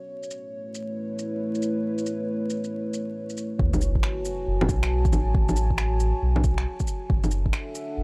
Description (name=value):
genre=future garage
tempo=137 BPM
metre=4/4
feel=swing 65% on 16ths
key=F# minor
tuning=A4 = 441 Hz
part: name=dark analog pad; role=sustained chords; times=0.0-8.0 s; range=A3 to A5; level=-32 LUFS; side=equal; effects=chorus, sidechain pumping
part: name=electronic shaker, bongos and finger snaps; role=drums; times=0.2-7.9 s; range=none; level=-32 LUFS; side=equal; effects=overdrive, low-pass filter on perc, low-pass filter on snare, low-pass filter on room
part: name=warm sub bass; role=bass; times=3.6-8.0 s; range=E1 to B1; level=-27 LUFS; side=equal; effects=tube saturation, sidechain pumping
part: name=electronic kick drum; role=drums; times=3.6-7.5 s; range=none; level=-27 LUFS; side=equal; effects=overdrive
part: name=sub drop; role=sound effects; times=3.6-5.3 s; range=none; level=-35 LUFS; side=equal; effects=none
room=little or no reverb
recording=dry, gritty hardware recording, vinyl crackle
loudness=-26 LUFS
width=mono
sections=0.0-3.6 A section; 3.6-8.0 B section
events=impact 3.6-5.3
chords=0.1 Aadd9; 3.6 F#m9; 7.1 Dmaj7